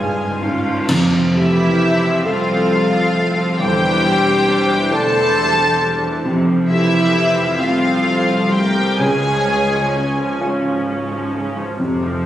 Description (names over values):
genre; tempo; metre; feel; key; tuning
cinematic, emotional film score for orchestra; 44 BPM (dotted quarters); 6/8; rubato; F major; A4 = 440 Hz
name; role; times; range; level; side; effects
rich studio violin section; melody; 0.0-10.4 s; E5 to A5; -21 LUFS; left 1 dB; none
dark studio violin section; second line; 0.0-10.4 s; E4 to A4; -22 LUFS; equal; none
warm grand piano; accompaniment; 0.0-12.3 s; Db2 to Db5; -24 LUFS; left 2 dB; none
warm studio viola section; accompaniment; 0.0-12.3 s; C3 to F4; -23 LUFS; equal; none
warm studio cello section; bass; 0.0-12.3 s; C2 to Ab2; -21 LUFS; right 1 dB; none
warm studio double bass section; bass; 0.9-12.3 s; E1 to Db2; -28 LUFS; right 2 dB; none
clash cymbals and concert bass drum; percussion; 0.9-2.6 s; none; -25 LUFS; equal; none
hollow small flute group; second line; 1.3-10.4 s; G4 to Db5; -23 LUFS; equal; none
dark French horn section; sustained chords; 1.3-10.4 s; E3 to A3; -24 LUFS; left 2 dB; none
room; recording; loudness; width
moderate recital hall reverb, RT60 1.4 s; recorded on a phone in the room, studio reverb, compression; -14 LUFS; side -12 dB against mid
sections
0.9-12.3 A section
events
band accent 0.9-1.8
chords
0.0 Db; 0.9 F; 3.6 Cadd9/E; 6.2 F; 9.0 Db